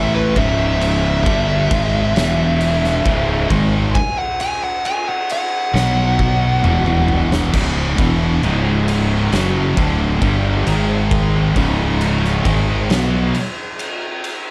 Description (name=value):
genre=stoner and doom metal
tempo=67 BPM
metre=4/4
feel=straight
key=unclear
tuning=A4 = 440 Hz
part: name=fuzz lead guitar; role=melody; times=0.0-7.5 s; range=B4 to G#5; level=-23 LUFS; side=equal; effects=distortion
part: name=fuzz guitar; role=riff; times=0.0-13.3 s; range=C#2 to B3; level=-22 LUFS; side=equal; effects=distortion
part: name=heavy high-gain guitar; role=riff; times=0.0-13.3 s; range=C#2 to B3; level=-25 LUFS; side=equal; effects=distortion
part: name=fuzz fingered electric bass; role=bass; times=0.0-13.3 s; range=C#1 to B1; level=-22 LUFS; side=equal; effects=overdrive
part: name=oversized low-tuned drum kit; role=drums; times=0.4-14.4 s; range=crash cymbal, kick drum, ride cymbal, snare drum, toms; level=-24 LUFS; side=equal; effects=none
room=light reverb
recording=dark, warm production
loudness=-17 LUFS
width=mono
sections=0.0-7.5 A section; 7.5-14.5 B section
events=lead electric guitar solo 0.0-7.5; drum fill 5.7-7.5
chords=0.0 C#m; 2.2 E5; 3.1 C#5; 5.7 B5; 6.6 E5; 7.5 C#m; 10.7 G#5; 11.6 C#5